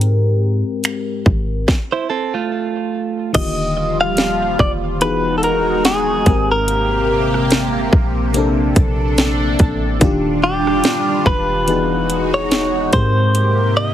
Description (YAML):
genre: contemporary R&B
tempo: 72 BPM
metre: 4/4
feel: swing 58% on 16ths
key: Eb major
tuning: A4 = 441 Hz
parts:
  - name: FM electric piano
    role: accompaniment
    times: 0.0-13.9 s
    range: Ab2 to Bb4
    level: -21 LUFS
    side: left 3 dB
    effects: chorus
  - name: clean 808-style bass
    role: bass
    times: 0.0-13.9 s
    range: Eb1 to Ab2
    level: -20 LUFS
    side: equal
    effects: none
  - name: trap drum kit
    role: drums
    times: 0.0-13.6 s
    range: crash cymbal, finger snaps, hi-hat, kick drum, rim click, snare drum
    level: -17 LUFS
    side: equal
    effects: none
  - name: direct-recorded clean electric guitar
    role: arpeggios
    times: 1.9-3.3 s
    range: A3 to C5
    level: -19 LUFS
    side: right 7 dB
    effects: digital delay
  - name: lush unison pad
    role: sustained chords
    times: 3.7-13.9 s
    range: C3 to A4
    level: -21 LUFS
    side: right 2 dB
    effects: chorus, phaser, sidechain pumping
  - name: direct-recorded clean electric guitar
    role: melody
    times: 3.4-13.9 s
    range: G4 to F5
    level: -18 LUFS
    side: equal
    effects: digital delay
room: little or no reverb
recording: heavily compressed radio sound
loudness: -14 LUFS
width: side -11 dB against mid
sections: 0.0-3.3 A section; 3.3-13.9 B section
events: stop 1.7-3.3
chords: 0.0 Abmaj9; 1.7 N.C.; 3.3 Ebmaj9; 5.0 Emaj9; 6.3 Abmaj9; 8.3 Bbmaj9; 10.0 Ebmaj9; 11.7 Emaj9; 12.9 Abmaj9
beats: | 0.01 0.85 1.68 2.51 | 3.35 4.18 5.01 5.85 | 6.68 7.51 8.35 9.18 | 10.01 10.85 11.68 12.51 | 13.35